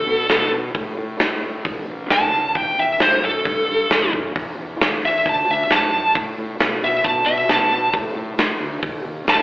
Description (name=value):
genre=blues rock power trio and southern rock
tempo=134 BPM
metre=4/4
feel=straight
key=A mixolydian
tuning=A4 = 441 Hz
part: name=smooth overdriven lead guitar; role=melody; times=0.0-9.4 s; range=A4 to A5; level=-17 LUFS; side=equal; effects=slapback echo
part: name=fuzz fingered electric bass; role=bass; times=0.1-9.4 s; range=A1 to B2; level=-27 LUFS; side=equal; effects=overdrive
part: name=big rock drum kit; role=drums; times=0.3-9.4 s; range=hi-hat, kick drum, snare drum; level=-21 LUFS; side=equal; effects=none
room=moderate club reverb, RT60 0.5 s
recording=live gig heard through the venue's PA, club reverb, telephone sound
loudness=-17 LUFS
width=side -19 dB against mid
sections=0.0-9.4 A section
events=lead electric guitar solo 0.0-9.4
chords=0.0 N.C.; 1.7 A; 5.3 D; 8.8 D#m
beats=0.30 0.76 1.21 | 1.66 2.11 2.56 3.01 | 3.46 3.91 4.36 4.81 | 5.26 5.71 6.15 6.60 | 7.05 7.49 7.94 8.39 | 8.83 9.28